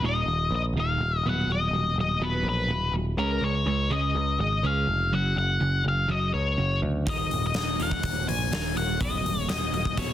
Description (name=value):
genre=quiet-loud alternative rock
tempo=124 BPM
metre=4/4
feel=straight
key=Eb minor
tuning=A4 = 439 Hz
part: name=twelve-string electric guitar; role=arpeggios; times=0.0-10.1 s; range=Eb2 to Db4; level=-31 LUFS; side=right 3 dB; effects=none
part: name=picked electric bass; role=bass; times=0.0-10.1 s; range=Eb1 to D2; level=-28 LUFS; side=equal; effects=none
part: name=octave-fuzz lead guitar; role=melody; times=0.1-10.1 s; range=Bb4 to Ab5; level=-28 LUFS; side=left 4 dB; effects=distortion, slapback echo
part: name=huge arena drum kit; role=drums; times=7.1-10.1 s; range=hi-hat, kick drum, snare drum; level=-29 LUFS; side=equal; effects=soft clipping on kick
room=small room reverb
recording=dense, heavily limited modern master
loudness=-24 LUFS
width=side -12 dB against mid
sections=0.0-10.1 A section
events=none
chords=0.0 Eb5; 1.2 B/D#; 3.2 Db; 5.1 Gb5; 7.1 Ebm; 9.0 B/D#